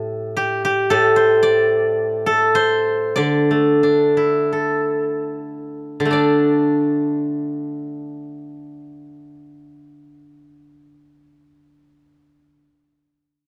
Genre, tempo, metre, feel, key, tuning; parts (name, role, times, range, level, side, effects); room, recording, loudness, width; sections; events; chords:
chinese traditional; 34-57 BPM; 2/4; rubato; D shang mode; A4 = 440 Hz
steel-string zither; solo; 0.0-12.6 s; A2 to D5; -19 LUFS; equal
small room ambience; dry, close 1970s-style studio recording; -18 LUFS; mono
0.0-6.1 A section; 6.1-9.5 B section
slowing down 0.9-6.1